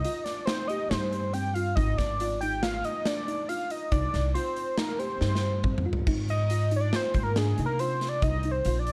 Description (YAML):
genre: progressive instrumental, band music in an uneven meter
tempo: 139 BPM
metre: 5/4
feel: straight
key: unclear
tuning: A4 = 442 Hz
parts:
  - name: fat analog lead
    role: melody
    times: 0.0-8.9 s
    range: Ab4 to G5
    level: -33 LUFS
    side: equal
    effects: chorus
  - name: upright bass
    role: bass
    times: 0.0-8.9 s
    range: Ab1 to C3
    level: -31 LUFS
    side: equal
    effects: none
  - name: big rock drum kit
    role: drums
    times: 0.0-8.9 s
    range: crash cymbal, hi-hat, kick drum, snare drum, toms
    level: -34 LUFS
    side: equal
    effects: none
  - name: thumb-piano-like synth pluck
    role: arpeggios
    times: 0.1-8.9 s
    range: C4 to G4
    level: -37 LUFS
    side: equal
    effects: chorus, digital delay
room: small room ambience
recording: dark, warm production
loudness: -28 LUFS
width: mono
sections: 0.0-6.1 A section; 6.1-8.9 B section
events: drum fill 5.2-6.1; analog synth lead solo 6.1-8.9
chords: 0.0 Cm; 1.8 Ab5; 3.9 Cmadd9; 6.1 Ab6; 8.2 Cm